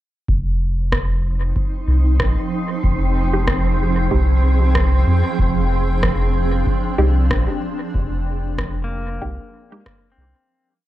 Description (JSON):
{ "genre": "ambient dub", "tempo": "94 BPM", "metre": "4/4", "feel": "swing 57% on 16ths", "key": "F dorian", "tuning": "A4 = 440 Hz", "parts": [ { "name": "granular cloud pad", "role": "sustained chords", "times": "1.3-10.5 s", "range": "F3 to G5", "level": "-24 LUFS", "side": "right 1 dB", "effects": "built-in reverb" }, { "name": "round analog bass", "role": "bass", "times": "0.3-10.3 s", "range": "F1 to F2", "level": "-18 LUFS", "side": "equal", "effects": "none" }, { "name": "electronic kick drum", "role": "drums", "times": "0.3-10.0 s", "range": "none", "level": "-23 LUFS", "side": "equal", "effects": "none" }, { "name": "wind-like tuned noise texture", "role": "texture", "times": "1.5-10.5 s", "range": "C5", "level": "-30 LUFS", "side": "right 5 dB", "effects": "built-in reverb" }, { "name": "electronic rim click", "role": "drums", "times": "0.9-10.0 s", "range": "none", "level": "-25 LUFS", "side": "equal", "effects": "dub echo" }, { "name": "filtered dub chord stab", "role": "stabs", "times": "3.3-9.8 s", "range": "Ab3 to G4", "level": "-25 LUFS", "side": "right 2 dB", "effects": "phaser, cassette tape, dub echo" }, { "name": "pedal steel guitar", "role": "arpeggios", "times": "8.8-10.7 s", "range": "Bb3 to C4", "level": "-34 LUFS", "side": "left 3 dB", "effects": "none" } ], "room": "digital ambience", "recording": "none", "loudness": "-16 LUFS", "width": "side -14 dB against mid", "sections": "0.3-10.5 groove", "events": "fade-out 7.1-10.5", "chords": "0.3 Fm9" }